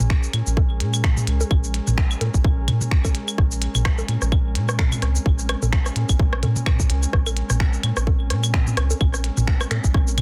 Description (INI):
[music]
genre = minimal techno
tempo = 128 BPM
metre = 4/4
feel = swing 56% on 16ths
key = Bb minor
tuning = A4 = 436 Hz
[part]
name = rubbery square bass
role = bass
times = 0.0-10.2 s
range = Bb1 to Bb2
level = -26 LUFS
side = equal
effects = tube saturation, sidechain pumping
[part]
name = minimal click drum kit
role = drums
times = 0.0-10.2 s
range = cabasa, finger snaps, hi-hat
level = -31 LUFS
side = equal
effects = soft clipping on snare
[part]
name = booming analog drum machine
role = percussion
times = 0.0-10.2 s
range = bongos, claves, rim click, toms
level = -28 LUFS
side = equal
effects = soft clipping on snare, digital delay
[part]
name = airy breathy pad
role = texture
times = 0.0-10.2 s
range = Db4 to Ab5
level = -37 LUFS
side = equal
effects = chorus, sidechain pumping
[part]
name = swarming drone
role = texture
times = 0.0-10.2 s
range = Ab3 to Ab4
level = -39 LUFS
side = equal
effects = built-in reverb, sidechain pumping
[part]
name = electronic kick drum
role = drums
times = 0.1-10.1 s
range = none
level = -21 LUFS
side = equal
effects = none
[sound]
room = little or no reverb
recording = dense, heavily limited modern master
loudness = -21 LUFS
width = mono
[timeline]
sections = 0.0-10.2 A section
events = none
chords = 0.0 Bbm7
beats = 0.10 0.57 1.04 | 1.51 1.98 2.44 2.91 | 3.38 3.85 4.32 4.79 | 5.26 5.73 6.19 6.66 | 7.13 7.60 8.07 8.54 | 9.01 9.48 9.94